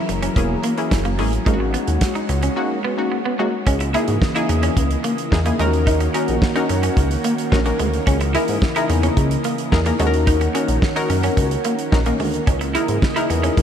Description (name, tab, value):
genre	early-eighties boogie funk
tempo	109 BPM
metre	4/4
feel	straight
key	C# dorian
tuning	A4 = 440 Hz
part	lush unison pad	sustained chords	0.0-13.6 s	C#3 to D#5	-25 LUFS	right 1 dB	chorus
part	electric guitar at the edge of break-up	riff	0.0-13.5 s	G#3 to E4	-25 LUFS	right 2 dB	analog chorus
part	chorused synth bass	bass	0.1-13.6 s	E1 to G#2	-21 LUFS	equal	none
part	damped 70s drum kit	drums	0.1-13.6 s	hi-hat, kick drum, snare drum	-22 LUFS	equal	none
part	funky polysynth comp	accompaniment	0.4-13.6 s	A#3 to A#4	-23 LUFS	left 3 dB	chorus
room	moderate huge ambient reverb, RT60 6.7 s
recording	dreamy mix soaked in reverb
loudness	-16 LUFS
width	side -8 dB against mid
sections	0.0-3.7 A section; 3.7-13.6 B section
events	none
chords	0.0 F#7; 1.5 G#7sus4; 3.7 C#m69; 5.6 D#m7; 8.1 C#m69; 10.0 D#m7; 12.5 C#m69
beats	0.36 0.92 | 1.47 2.02 2.57 3.12 | 3.67 4.22 4.77 5.32 | 5.87 6.42 6.97 7.52 | 8.07 8.62 9.17 9.72 | 10.27 10.82 11.37 11.92 | 12.47 13.03 13.57